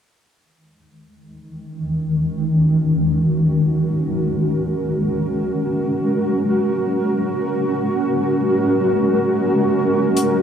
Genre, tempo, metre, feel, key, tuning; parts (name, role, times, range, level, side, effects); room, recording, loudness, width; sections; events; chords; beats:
ambient dub; free time; Eb minor; A4 = 445 Hz
granular cloud pad; sustained chords; 1.6-10.4 s; Eb3 to Bb4; -17 LUFS; equal; built-in reverb
hi-hat; drums; 10.2-10.3 s; -25 LUFS; left 3 dB; studio reverb
wet huge ambient reverb, RT60 4.0 s; -16 LUFS; side -8 dB against mid
0.4-10.4 A section
0.4 Ebm7; 5.3 Absus2
free time